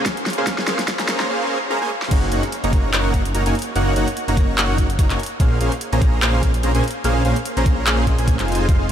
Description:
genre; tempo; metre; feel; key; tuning
future bass; 146 BPM; 4/4; swing 56% on 16ths, half-time; Bb minor; A4 = 440 Hz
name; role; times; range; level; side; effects
dense compressed supersaw; riff; 0.0-8.9 s; Ab3 to Bb5; -21 LUFS; right 1 dB; sidechain pumping, diffuse ambient delay
big-room dance drum kit; drums; 0.1-8.9 s; crash cymbal, handclaps, hi-hat, snare drum, toms; -24 LUFS; equal; overdrive, small room reverb
electronic kick drum; drums; 0.1-8.8 s; none; -18 LUFS; equal; small room reverb
wide detuned saw bass; bass; 2.1-8.9 s; F1 to Bb1; -21 LUFS; equal; chorus, sidechain pumping
room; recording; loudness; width
moderate huge ambient reverb, RT60 7.3 s; dreamy mix soaked in reverb, high-pass filter; -16 LUFS; side -9 dB against mid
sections
0.0-2.1 A section; 2.1-8.9 B section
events
build-up 0.0-2.1; drum fill 0.0-1.3, 1.7-2.1; drop 2.1-8.9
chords
0.0 Bbm9; 1.9 N.C.; 2.1 Gb6; 5.4 Bbm9

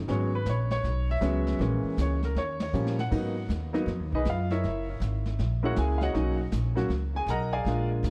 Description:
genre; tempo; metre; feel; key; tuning
jazz piano trio; 158 BPM; 4/4; swing 64% on 8ths; unclear; A4 = 440 Hz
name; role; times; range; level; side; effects
upright bass; bass; 0.0-8.1 s; Gb1 to Bb2; -31 LUFS; equal; none
clear concert grand piano; melody; 0.1-8.1 s; Fb3 to A#5; -32 LUFS; equal; tape echo
vintage brush drum kit; drums; 0.1-8.1 s; brushed snare drum, crash cymbal, hi-hat, kick drum, ride cymbal, snare drum; -40 LUFS; equal; tape echo
room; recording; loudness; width
light reverb, small room ambience; echo-heavy mix; -28 LUFS; mono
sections
0.0-8.1 A section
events
band accent 2.5; drum fill 2.7-3.1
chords
0.1 E6; 1.6 Bbm7b5; 2.4 Eb7; 3.1 Abm7; 4.6 Gb7; 6.1 Bmaj9

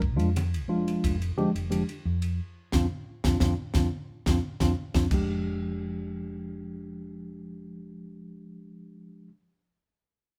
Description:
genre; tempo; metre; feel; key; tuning
electric jazz fusion; 88 BPM; 4/4; straight; unclear; A4 = 439 Hz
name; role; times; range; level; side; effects
woody fretless electric bass; bass; 0.0-9.3 s; F1 to F2; -32 LUFS; equal; none
crisp fusion drum kit; drums; 0.0-5.3 s; crash cymbal, kick drum, ride cymbal, snare drum; -32 LUFS; equal; none
congas; percussion; 0.0-5.4 s; none; -38 LUFS; equal; none
mellow tine electric piano; accompaniment; 0.2-9.3 s; F3 to G4; -33 LUFS; equal; none
room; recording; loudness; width
light reverb; band playing live in one room; -28 LUFS; mono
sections
0.0-5.1 A section; 5.1-7.8 B section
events
band accent 2.4-5.1; drum fill 4.4-5.1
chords
0.0 Fm6; 5.1 Fm69

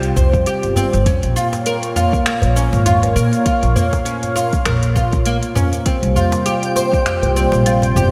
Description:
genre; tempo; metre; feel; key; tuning
organic downtempo; 100 BPM; 4/4; swing 57% on 16ths; unclear; A4 = 441 Hz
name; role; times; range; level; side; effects
warm analog pad; sustained chords; 0.0-8.1 s; Bb2 to G5; -23 LUFS; equal; chorus, sidechain pumping
upright bass; bass; 0.0-8.1 s; G1 to Bb2; -19 LUFS; equal; none
organic electronic drum kit; drums; 0.0-8.1 s; cabasa, finger snaps, hi-hat, toms; -24 LUFS; equal; none
oud; arpeggios; 0.2-8.1 s; Bb3 to C5; -22 LUFS; equal; delay
electronic kick drum; drums; 0.2-7.0 s; none; -22 LUFS; equal; none
djembe; percussion; 0.2-7.9 s; none; -27 LUFS; equal; none
twinkling granular texture; texture; 6.1-8.1 s; G5; -32 LUFS; equal; built-in reverb
room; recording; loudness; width
moderate lush hall reverb, RT60 2.5 s; dreamy mix soaked in reverb; -16 LUFS; mono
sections
0.0-8.1 A section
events
none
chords
0.0 Csus4; 1.1 Bbm; 5.9 Csus4

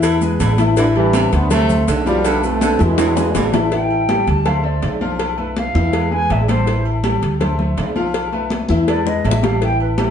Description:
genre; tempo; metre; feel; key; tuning
latin, salsa; 163 BPM; 4/4; straight; A minor; A4 = 442 Hz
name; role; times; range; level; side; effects
clear baritone saxophone; second line; 0.0-3.5 s; C3 to E3; -23 LUFS; right 4 dB; none
bright upright piano; accompaniment; 0.0-10.1 s; E3 to F5; -21 LUFS; left 2 dB; none
upright bass; bass; 0.0-10.1 s; A1 to E2; -19 LUFS; right 1 dB; none
agogo bells and timbales; percussion; 0.0-10.1 s; none; -25 LUFS; left 1 dB; none
congas; percussion; 0.0-10.1 s; none; -24 LUFS; left 1 dB; none
cowbell and bongos; percussion; 0.0-10.1 s; none; -25 LUFS; left 3 dB; none
maracas; percussion; 0.0-3.7 s; none; -34 LUFS; left 3 dB; none
clear trombone section; melody; 0.8-3.5 s; G2 to C4; -20 LUFS; right 1 dB; tape echo
silver concert flute; melody; 3.7-10.1 s; B4 to A5; -22 LUFS; right 1 dB; none
room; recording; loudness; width
wet studio reverb, RT60 0.8 s; heard from further back in the room, nothing above 10.6 kHz; -14 LUFS; side -8 dB against mid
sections
0.0-3.7 A section; 3.7-10.1 B section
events
drum fill 3.0-3.7, 9.1-9.6; flute solo 3.7-10.1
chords
0.0 E; 0.8 Am7; 1.5 Dm7; 2.2 Bm7b5; 3.0 E; 3.7 A5; 4.5 Dm7; 5.2 Fmaj7#11/B; 5.9 E; 6.7 A5; 7.4 Dm7; 8.1 Fmaj7#11/B; 8.9 E

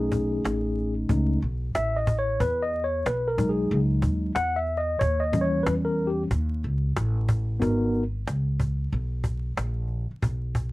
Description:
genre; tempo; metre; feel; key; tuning
hip hop, jazz-hop; 92 BPM; 4/4; swing 66% on 16ths; G# minor; A4 = 437 Hz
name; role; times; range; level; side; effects
mellow tine electric piano; accompaniment; 0.0-8.0 s; E3 to F#5; -25 LUFS; left 1 dB; fast stereo tremolo
upright bass; bass; 0.0-10.7 s; G#1 to E2; -27 LUFS; equal; none
cajon; drums; 0.1-10.7 s; none; -28 LUFS; equal; none
room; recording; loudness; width
little or no reverb; dry, close 1970s-style studio recording, vinyl crackle; -23 LUFS; side -19 dB against mid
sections
0.0-7.6 A section; 7.6-10.7 B section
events
tine electric piano solo 0.0-7.6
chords
0.0 B9; 2.4 Emaj9; 5.0 D#7b9; 7.6 G#m9

